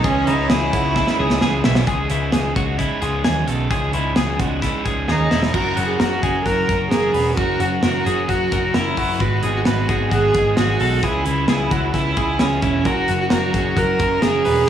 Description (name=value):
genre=jangly indie pop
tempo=131 BPM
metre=4/4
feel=straight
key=C# minor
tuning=A4 = 440 Hz
part: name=clear viola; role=melody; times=0.0-1.6, 5.1-14.7 s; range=C#4 to A#4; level=-21 LUFS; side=right 2 dB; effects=none
part: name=crunchy overdriven guitar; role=accompaniment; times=0.0-14.7 s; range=G#2 to A#4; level=-25 LUFS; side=right 8 dB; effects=none
part: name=string machine, full ensemble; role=sustained chords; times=0.0-1.9 s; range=C#5 to D#6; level=-31 LUFS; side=left 1 dB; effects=ensemble chorus
part: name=twelve-string electric guitar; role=arpeggios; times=0.0-14.7 s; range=E4 to B4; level=-24 LUFS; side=left 4 dB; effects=wide subtle chorus, analog delay
part: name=deep dub picked electric bass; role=bass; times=0.0-14.6 s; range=E1 to D#2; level=-23 LUFS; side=left 1 dB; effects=none
part: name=modern studio drum kit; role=drums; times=0.0-14.6 s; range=crash cymbal, hi-hat, kick drum, snare drum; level=-22 LUFS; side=equal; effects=none
room=moderate studio reverb, RT60 0.6 s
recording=studio ambience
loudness=-16 LUFS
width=side -9 dB against mid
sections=0.0-1.9 A section; 1.9-5.5 B section; 5.5-14.7 C section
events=drum fill 1.0-1.9, 5.1-5.5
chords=0.0 C#madd9; 5.5 F#; 9.2 G#m; 11.0 C#m; 12.9 F#